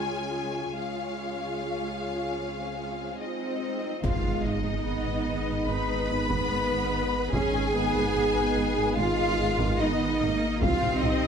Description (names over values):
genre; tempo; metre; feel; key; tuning
cinematic, hybrid orchestral and electronic film score; 73 BPM; 4/4; straight; G# dorian; A4 = 440 Hz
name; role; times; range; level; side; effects
warm symphonic violin section; melody; 0.0-11.3 s; D#5 to B5; -35 LUFS; left 6 dB; none
rich symphonic violin section; second line; 0.0-11.3 s; G#4 to B5; -34 LUFS; left 5 dB; none
warm symphonic viola section; accompaniment; 0.0-11.3 s; G#3 to E#4; -32 LUFS; right 2 dB; none
rich symphonic cello section; bass; 0.0-11.3 s; C#2 to B4; -30 LUFS; right 2 dB; none
swell and impact; sound effects; 2.5-7.3 s; none; -36 LUFS; equal; none
mellow French horn section; sustained chords; 4.0-11.3 s; B2 to G4; -35 LUFS; left 2 dB; none
warm trombone section; sustained chords; 4.0-11.3 s; D#3 to G#3; -36 LUFS; right 4 dB; none
clear symphonic double bass section; bass; 4.0-11.3 s; G#1 to C2; -34 LUFS; right 4 dB; none
pure sine sub bass; bass; 4.0-11.3 s; G#1 to C2; -34 LUFS; equal; none
taiko ensemble; drums; 4.0-11.3 s; none; -32 LUFS; equal; none
room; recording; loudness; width
moderate scoring stage reverb, RT60 1.4 s; none; -25 LUFS; side -7 dB against mid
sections
0.0-4.0 A section; 4.0-11.3 A section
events
swell 2.5-4.0; impact 4.0-7.3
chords
0.0 C#; 4.0 G#m; 10.6 Cm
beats
| 0.76 1.58 2.40 3.22 | 4.04 4.87 5.69 6.51 | 7.33 8.15 8.97 9.80 | 10.62